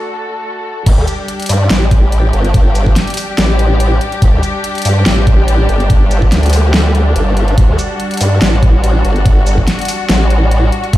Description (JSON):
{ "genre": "heavy wobble dubstep", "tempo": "143 BPM", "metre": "4/4", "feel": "swing 53% on 16ths, half-time", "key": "unclear", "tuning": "A4 = 440 Hz", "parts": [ { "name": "muted studio string section", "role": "sustained chords", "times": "0.0-11.0 s", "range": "D2 to A4", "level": "-19 LUFS", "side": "left 1 dB", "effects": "sidechain pumping" }, { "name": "formant-sweep wobble bass", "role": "bass", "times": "0.9-11.0 s", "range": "G1 to G2", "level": "-11 LUFS", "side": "equal", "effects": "chorus, overdrive" }, { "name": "dubstep drum kit", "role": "drums", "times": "0.9-11.0 s", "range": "crash cymbal, hi-hat, shaker, snare drum", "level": "-17 LUFS", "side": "equal", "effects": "overdrive, high-pass filter on hats, high-pass filter on perc, high-pass filter on cymbals, high-pass filter on snare" }, { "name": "electronic kick drum", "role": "drums", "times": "0.9-11.0 s", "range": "none", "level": "-10 LUFS", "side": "equal", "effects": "overdrive" } ], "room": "little or no reverb", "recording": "played on a big sound system in a bare room, stone room reverb, high-pass filter", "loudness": "-9 LUFS", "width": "side -15 dB against mid", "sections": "0.9-11.0 A section", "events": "break 0.0-0.9; drop 0.9-11.0", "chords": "0.0 D; 0.9 G5", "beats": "0.03 0.44 | 0.86 1.28 1.70 2.12 | 2.54 2.96 3.38 3.80 | 4.22 4.64 5.06 5.48 | 5.90 6.32 6.74 7.16 | 7.58 8.00 8.42 8.84 | 9.26 9.68 10.10 10.51 | 10.93" }